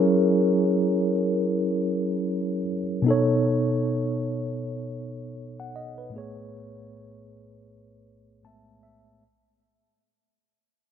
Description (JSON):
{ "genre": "R&B", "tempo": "78 BPM", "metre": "4/4", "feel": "swing 58% on 16ths", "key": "unclear", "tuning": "A4 = 440 Hz", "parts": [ { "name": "mellow tine electric piano", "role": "solo", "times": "0.0-9.2 s", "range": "A2 to A5", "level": "-23 LUFS", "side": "equal", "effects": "medium stereo tremolo, tape echo" } ], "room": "light reverb", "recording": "nothing above 7.5 kHz", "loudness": "-22 LUFS", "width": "side -8 dB against mid", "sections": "0.0-9.2 A section", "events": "fade-out 0.0-9.2; tine electric piano fill 8.1-9.2", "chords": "0.0 F#7; 3.1 B7; 6.1 Amaj7" }